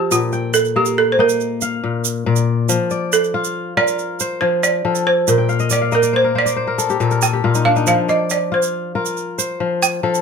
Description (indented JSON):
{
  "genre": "west african traditional, West African string and xylophone music",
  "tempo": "93 BPM (dotted quarters)",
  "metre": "12/8",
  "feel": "straight",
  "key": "F mixolydian",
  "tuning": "A4 = 440 Hz",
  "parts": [
    { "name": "balafon", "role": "melody", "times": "0.0-10.2 s", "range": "F4 to G5", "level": "-17 LUFS", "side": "right 4 dB", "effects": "none" },
    { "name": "kora", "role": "arpeggios", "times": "0.0-10.2 s", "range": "Bb2 to G5", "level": "-18 LUFS", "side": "left 5 dB", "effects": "none" },
    { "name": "tube shaker", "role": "percussion", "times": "0.1-10.2 s", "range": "none", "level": "-24 LUFS", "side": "right 11 dB", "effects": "none" }
  ],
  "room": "moderate studio reverb, RT60 0.5 s",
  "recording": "none",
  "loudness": "-15 LUFS",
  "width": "side -6 dB against mid",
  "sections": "0.0-10.2 A section",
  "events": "balafon solo 0.0-10.2; kora fill 5.4-7.9",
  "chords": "0.1 Bb; 2.7 F; 5.3 Bb; 7.9 F5",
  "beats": "| 0.12 0.76 1.41 2.05 | 2.70 3.34 3.99 4.63 | 5.28 5.93 6.58 7.22 | 7.87 8.52 9.17 9.82"
}